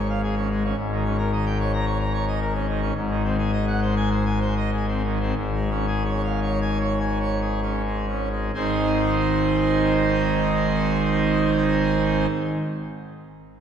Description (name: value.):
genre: classical, organ toccata.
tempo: 62-111 BPM.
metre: 4/4.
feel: straight.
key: Ab major.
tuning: A4 = 441 Hz.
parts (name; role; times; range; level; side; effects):
pipe organ, full organ; solo; 0.0-12.3 s; Ab1 to Bb5; -21 LUFS; equal; none.
room: wet church reverb, RT60 3.1 s.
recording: none.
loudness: -20 LUFS.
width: side -8 dB against mid.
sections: 0.0-8.5 A section; 8.5-12.4 B section.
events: slowing down 1.9-8.5.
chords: 0.0 Db/Ab; 0.8 Eb7/Ab; 3.0 Ab7; 5.4 Db/Ab; 8.5 Ab.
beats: 0.23 | 0.77 1.32 1.86 2.40 | 2.95 3.52 4.10 4.71 | 5.36 6.05 6.80 7.63 | 8.54 9.49 10.44 11.40.